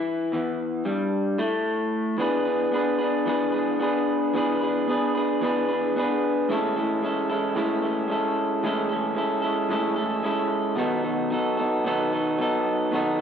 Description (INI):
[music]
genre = rock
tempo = 112 BPM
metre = 4/4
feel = straight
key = E mixolydian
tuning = A4 = 439 Hz
[part]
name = electric guitar through a small old amp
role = solo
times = 0.0-13.2 s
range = E2 to B4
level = -22 LUFS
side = equal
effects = none
[sound]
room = wet large studio reverb, RT60 1.3 s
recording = band playing live in one room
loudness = -22 LUFS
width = side -8 dB against mid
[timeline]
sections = 0.0-2.2 A section; 2.2-13.2 B section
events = none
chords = 0.0 E5; 2.2 E7; 6.5 Amaj7; 10.8 B7